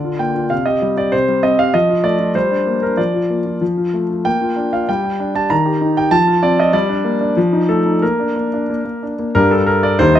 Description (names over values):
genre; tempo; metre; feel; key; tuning
classical-period piano sonatina; 96 BPM; 2/4; rubato; Bb major; A4 = 440 Hz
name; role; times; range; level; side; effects
clear grand piano; solo; 0.0-10.2 s; Eb2 to Bb5; -14 LUFS; equal; none
room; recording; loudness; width
light reverb; close, detailed microphones; -14 LUFS; side -11 dB against mid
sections
0.0-9.4 A section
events
none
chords
0.0 Bb/D; 0.5 C5; 1.7 F7; 2.4 Gm; 3.0 Bb/F; 3.6 F; 4.3 Bb; 4.9 G5; 5.5 Eb; 6.1 F; 6.7 Gm; 7.4 F7; 8.0 Bb; 9.4 G5